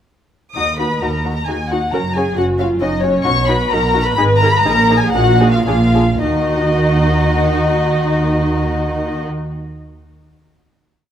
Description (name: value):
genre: quick classical-period movement for string orchestra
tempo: 104-136 BPM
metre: 3/4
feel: rubato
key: Eb minor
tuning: A4 = 435 Hz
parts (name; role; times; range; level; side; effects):
- muted studio violin section; melody; 0.5-9.2 s; Db5 to Eb6; -18 LUFS; left 3 dB; none
- muted studio violin section; second line; 0.6-9.2 s; Db4 to Ab4; -22 LUFS; left 2 dB; none
- muted studio viola section; accompaniment; 0.6-9.2 s; Db4 to Eb5; -21 LUFS; equal; none
- muted studio cello section; bass; 0.6-9.2 s; Eb2 to Eb3; -20 LUFS; right 2 dB; none
- muted studio double bass section; bass; 0.6-9.2 s; Gb1 to Eb2; -20 LUFS; right 2 dB; none
room: moderate scoring stage reverb, RT60 2.0 s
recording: none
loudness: -13 LUFS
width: side -10 dB against mid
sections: 0.6-6.2 A section; 6.2-9.6 final chord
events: slowing down 2.6-6.2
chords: 0.6 Ebm; 1.9 Gb5; 3.3 B; 4.2 Abm; 4.6 Bb7sus4; 5.7 Bb5; 6.2 Ebm